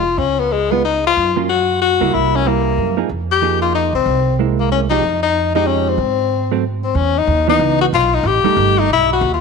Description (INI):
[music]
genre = jazz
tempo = 186 BPM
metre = 3/4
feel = swing 62% on 8ths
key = F minor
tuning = A4 = 438 Hz
[part]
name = clear tenor saxophone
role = melody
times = 0.0-9.4 s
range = Ab3 to G4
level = -15 LUFS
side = left 8 dB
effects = none
[part]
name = hollow-body jazz guitar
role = accompaniment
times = 0.0-8.9 s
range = E3 to Ab4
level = -20 LUFS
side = right 14 dB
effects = none
[part]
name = upright bass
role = bass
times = 0.0-9.4 s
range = F1 to Ab2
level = -20 LUFS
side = right 2 dB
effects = none
[sound]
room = moderate echo chamber reverb, RT60 1.8 s, small room ambience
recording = 1960s-style stereo with parts hard left and right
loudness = -13 LUFS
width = side -5 dB against mid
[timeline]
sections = 0.0-7.0 A section; 7.0-9.4 B section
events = none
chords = 0.2 Db7(no3); 1.2 Gbmaj7; 2.1 C7; 3.1 Fm11; 4.1 C7b13; 5.0 Fm9; 6.0 Ab; 7.0 C#m9; 7.9 Baug7; 8.9 Emaj7sus2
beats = | 0.19 0.51 0.84 | 1.16 1.48 1.80 | 2.13 2.45 2.77 | 3.09 3.42 3.74 | 4.06 4.38 4.71 | 5.03 5.35 5.68 | 6.00 6.32 6.64 | 6.96 7.29 7.61 | 7.93 8.25 8.57 | 8.90 9.22